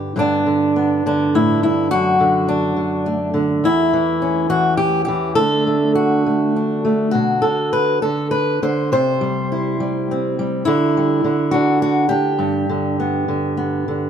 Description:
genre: folk, solo fingerstyle acoustic guitar.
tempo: 103 BPM.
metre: 3/4.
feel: rubato.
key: G major.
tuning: A4 = 439 Hz.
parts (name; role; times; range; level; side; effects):
fingerpicked steel-string acoustic guitar; solo; 0.0-14.1 s; E2 to C5; -16 LUFS; equal; none.
room: light reverb.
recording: none.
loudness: -15 LUFS.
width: side -8 dB against mid.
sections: 0.2-14.1 A section.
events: none.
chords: 0.2 G; 1.9 D/F#; 3.6 Em69; 5.4 D; 7.1 Bm; 8.9 C; 10.7 Dsus4; 11.2 N.C.; 12.4 G.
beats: | 0.16 0.75 1.34 | 1.91 2.49 3.06 | 3.64 4.21 4.79 | 5.38 5.97 6.55 | 7.15 7.74 8.33 | 8.92 9.50 10.08 | 10.66 11.24 11.81 | 12.39 12.97 13.57.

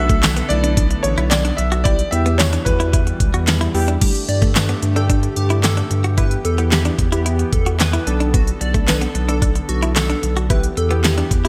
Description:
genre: dance-pop.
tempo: 111 BPM.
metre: 4/4.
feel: straight.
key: B minor.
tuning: A4 = 440 Hz.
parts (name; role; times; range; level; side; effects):
clear concert grand piano; melody; 0.0-3.7 s; B4 to E5; -25 LUFS; equal; digital delay.
warm analog keys; accompaniment; 0.0-11.5 s; G3 to A4; -29 LUFS; equal; chorus, sidechain pumping.
chorused pulse-width pad; sustained chords; 0.0-11.5 s; D3 to A4; -30 LUFS; equal; sidechain pumping.
saturated sub bass; bass; 0.0-11.5 s; A1 to G2; -22 LUFS; equal; sidechain pumping.
direct-recorded clean electric guitar; riff; 0.1-11.5 s; G3 to F#4; -28 LUFS; equal; lush chorus.
pop drum kit; drums; 0.1-11.5 s; crash cymbal, handclaps, hi-hat, kick drum, snare drum; -21 LUFS; equal; gated reverb.
tambourine; percussion; 0.2-11.2 s; none; -32 LUFS; equal; none.
plucky unison lead; melody; 4.0-11.5 s; F#4 to D5; -29 LUFS; equal; subtle chorus, sidechain pumping.
room: light reverb.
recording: bright 1980s-style digital production.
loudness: -17 LUFS.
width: mono.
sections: 0.0-4.0 A section; 4.0-11.5 B section.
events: none.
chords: 0.0 Bm7; 1.9 Em; 4.0 Gsus2; 6.2 Em; 8.1 Bm7; 10.5 Em.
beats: 0.23 0.77 1.31 | 1.85 2.39 2.93 3.48 | 4.01 4.56 5.10 5.64 | 6.18 6.72 7.26 7.80 | 8.34 8.88 9.42 9.96 | 10.50 11.04.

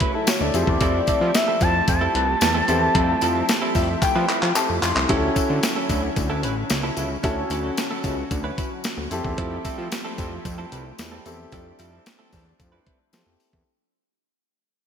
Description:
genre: early-eighties boogie funk.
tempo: 112 BPM.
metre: 4/4.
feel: straight.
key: unclear.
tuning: A4 = 440 Hz.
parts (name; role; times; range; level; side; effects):
clear concert grand piano; accompaniment; 0.0-13.7 s; C#3 to C6; -27 LUFS; left 2 dB; none.
lush unison pad; sustained chords; 0.0-13.6 s; C#3 to G4; -31 LUFS; equal; chorus.
direct-recorded clean electric guitar; riff; 0.0-13.6 s; F#3 to B4; -30 LUFS; right 3 dB; wide subtle chorus.
crisp 8-bit digital drum machine; drums; 0.0-13.7 s; handclaps, hi-hat, kick drum, snare drum; -25 LUFS; equal; none.
tambourine; percussion; 0.3-13.5 s; none; -35 LUFS; left 9 dB; none.
fat analog bass; bass; 0.4-13.6 s; A1 to F3; -26 LUFS; equal; none.
expressive portamento lead; melody; 0.5-4.5 s; D5 to A5; -23 LUFS; equal; chorus, digital delay.
room: moderate lush hall reverb, RT60 2.2 s.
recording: bright 1980s-style digital production.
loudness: -19 LUFS.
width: side -7 dB against mid.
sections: 0.0-5.1 A section; 5.1-13.7 B section.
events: grand piano fill 3.5-5.1; drum fill 4.0-5.1; fade-out 5.1-13.7.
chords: 0.0 Dmaj9; 0.5 Fmaj9; 5.1 Dmaj9; 9.1 Fmaj9.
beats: 0.27 | 0.81 1.34 1.88 2.42 | 2.95 3.49 4.02 4.56 | 5.09 5.63 6.17 6.70 | 7.24 7.77 8.31 8.85 | 9.38 9.92 10.45 10.99 | 11.52 12.06 12.60 13.13.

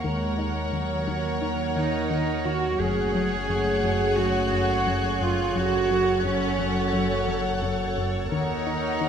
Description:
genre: cinematic, suspense film score.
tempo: 87 BPM.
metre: 4/4.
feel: straight.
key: unclear.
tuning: A4 = 443 Hz.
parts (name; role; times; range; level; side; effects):
dark studio violin section; melody; 0.0-9.1 s; F#5; -34 LUFS; left 1 dB; none.
clear studio violin section; second line; 0.0-9.1 s; C#5; -34 LUFS; left 2 dB; none.
dark studio viola section; accompaniment; 0.0-9.1 s; A3 to A#4; -34 LUFS; equal; none.
soft additive organ-like pad; sustained chords; 0.0-9.1 s; G#4 to G#5; -34 LUFS; left 2 dB; ensemble chorus, built-in reverb.
plucky analog bass; riff; 0.0-9.1 s; F#2 to D#4; -31 LUFS; left 3 dB; none.
rich studio double bass section; bass; 0.0-9.1 s; D#2 to F#2; -30 LUFS; right 2 dB; none.
warm studio cello section; bass; 0.0-9.1 s; F#3 to G#4; -27 LUFS; right 3 dB; none.
saturated sub bass; drone; 0.0-9.1 s; F#1 to D#2; -35 LUFS; left 1 dB; none.
warm studio violin section; texture; 2.8-7.9 s; F#6 to G#6; -35 LUFS; left 4 dB; none.
room: wet concert hall reverb, RT60 1.9 s.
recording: none.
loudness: -22 LUFS.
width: side -8 dB against mid.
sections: 0.0-9.1 A section.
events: none.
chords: 0.0 D#m7; 2.8 F#madd9; 8.3 D#m7.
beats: | 0.04 0.73 1.42 2.11 | 2.80 3.49 4.18 4.87 | 5.56 6.25 6.94 7.63 | 8.32 9.01.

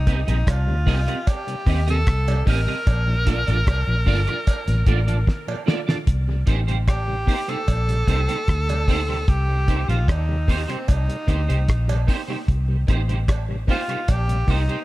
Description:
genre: roots reggae.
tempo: 75 BPM.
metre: 4/4.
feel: straight.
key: C dorian.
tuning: A4 = 440 Hz.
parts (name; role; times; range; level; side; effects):
breathy tenor saxophone; melody; 0.0-14.8 s; C4 to Bb4; -28 LUFS; equal; dub echo.
vintage muted fingered electric bass; bass; 0.0-14.7 s; G1 to Eb2; -21 LUFS; equal; none.
clean electric guitar; accompaniment; 0.1-14.8 s; Bb3 to Eb5; -30 LUFS; right 5 dB; ensemble chorus, dub echo.
mellow tonewheel organ; accompaniment; 0.1-14.8 s; Bb2 to Eb4; -33 LUFS; left 1 dB; slow rotary speaker, dub echo.
cloth-damped thuddy drum kit; drums; 0.1-14.8 s; hi-hat, kick drum, rim click, snare drum; -21 LUFS; equal; none.
cowbell; percussion; 0.5-14.3 s; none; -36 LUFS; right 7 dB; none.
room: small room ambience.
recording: none.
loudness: -19 LUFS.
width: side -18 dB against mid.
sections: 0.0-6.1 A section; 6.1-14.8 B section.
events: drum fill 5.3-6.1.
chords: 0.0 Cm7; 2.9 Bbmaj7; 6.1 Cm7.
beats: 0.47 1.27 2.07 | 2.87 3.67 4.47 5.27 | 6.07 6.87 7.67 8.48 | 9.28 10.08 10.88 11.68 | 12.48 13.29 14.09.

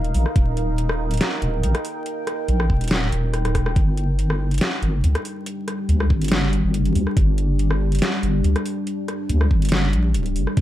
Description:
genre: deep dubstep.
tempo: 141 BPM.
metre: 4/4.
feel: swing 53% on 16ths, half-time.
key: G minor.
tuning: A4 = 439 Hz.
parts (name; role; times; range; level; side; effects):
deep dark ambient pad; sustained chords; 0.0-10.6 s; G3 to G5; -26 LUFS; equal; chorus, built-in reverb.
deep soft wobble bass; bass; 0.0-10.6 s; D1 to D2; -20 LUFS; equal; chorus.
dubstep drum kit; drums; 0.0-10.6 s; hi-hat, rim click, snare drum; -25 LUFS; equal; none.
electronic kick drum; drums; 0.4-10.6 s; none; -18 LUFS; equal; none.
room: little or no reverb.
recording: dark, warm production, vinyl crackle.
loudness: -18 LUFS.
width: side -13 dB against mid.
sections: 0.0-10.6 A section.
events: drum fill 3.3-3.8.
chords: 0.0 Eb; 3.8 G5.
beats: | 0.36 0.78 1.21 1.63 | 2.06 2.49 2.91 3.34 | 3.76 4.19 4.61 5.04 | 5.46 5.89 6.32 6.74 | 7.17 7.59 8.02 8.44 | 8.87 9.29 9.72 10.14 | 10.57.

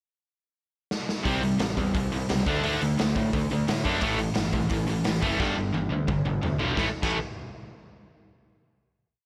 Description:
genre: punk rock.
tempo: 174 BPM.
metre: 4/4.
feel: straight.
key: A minor.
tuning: A4 = 440 Hz.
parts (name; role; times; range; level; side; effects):
raw garage drum kit; drums; 0.9-7.1 s; crash cymbal, hi-hat, kick drum, snare drum, toms; -32 LUFS; equal; none.
distorted electric guitar; riff; 1.2-7.2 s; G2 to D4; -31 LUFS; equal; distortion.
distorted electric guitar; riff; 1.2-7.2 s; G2 to D4; -32 LUFS; equal; distortion.
overdriven picked electric bass; bass; 1.3-7.2 s; F#1 to A2; -34 LUFS; equal; none.
room: little or no reverb.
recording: none.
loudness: -26 LUFS.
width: mono.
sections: 0.0-1.3 pickup bar; 1.3-6.8 verse; 6.8-8.1 final chord.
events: drum fill 0.9-1.3, 5.4-6.8.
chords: 0.0 N.C.; 1.3 C5; 2.5 D5; 4.0 A5; 5.4 G5; 6.8 A5.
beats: 0.22 0.56 0.91 | 1.25 1.60 1.95 2.29 | 2.64 2.99 3.33 3.68 | 4.02 4.37 4.71 5.06 | 5.40 5.75 6.09 6.43 | 6.78 7.12.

